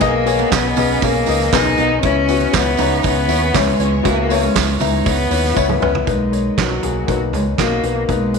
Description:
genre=piano-driven pop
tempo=119 BPM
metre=4/4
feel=straight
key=B major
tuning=A4 = 439 Hz
part: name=warm cello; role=melody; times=0.0-8.4 s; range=F#3 to D#4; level=-19 LUFS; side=equal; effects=none
part: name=warm upright piano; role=accompaniment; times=0.0-8.4 s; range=G#2 to F#5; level=-19 LUFS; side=left 12 dB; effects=none
part: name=warm studio string section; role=sustained chords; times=0.0-6.0 s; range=B2 to G#5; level=-30 LUFS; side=equal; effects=none
part: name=picked steel-string acoustic guitar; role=riff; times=0.0-5.9 s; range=B3 to E4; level=-26 LUFS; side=right 14 dB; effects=none
part: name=fingered electric bass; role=bass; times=0.0-8.4 s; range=B1 to D#2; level=-22 LUFS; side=right 1 dB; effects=none
part: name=loose indie drum kit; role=drums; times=0.0-8.4 s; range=handclaps, hi-hat, kick drum, snare drum, toms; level=-21 LUFS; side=right 6 dB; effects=none
part: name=tambourine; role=percussion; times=0.0-5.7 s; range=none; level=-32 LUFS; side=right 16 dB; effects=none
room=light reverb, small room ambience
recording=1960s-style stereo with parts hard left and right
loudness=-14 LUFS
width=side -5 dB against mid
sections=0.0-6.1 A section; 6.1-8.4 B section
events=drum fill 5.6-6.1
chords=0.0 Bmaj7; 2.0 C#m7; 6.1 Bmaj7

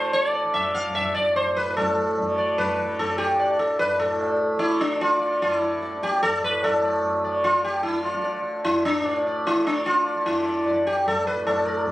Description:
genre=indian classical, Hindustani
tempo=148 BPM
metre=3/4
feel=straight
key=D raga kafi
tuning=A4 = 440 Hz
part: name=sitar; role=melody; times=0.0-11.9 s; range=D4 to F5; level=-22 LUFS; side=equal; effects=none
part: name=tanpura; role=drone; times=0.0-11.9 s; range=D2 to D3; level=-30 LUFS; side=right 1 dB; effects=none
part: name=tabla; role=percussion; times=0.1-11.9 s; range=none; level=-29 LUFS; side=equal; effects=none
room=moderate studio reverb, RT60 0.5 s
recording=recorded on a phone in the room, studio reverb, compression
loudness=-20 LUFS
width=side -16 dB against mid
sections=0.0-6.6 A section; 6.6-11.9 B section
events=none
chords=none

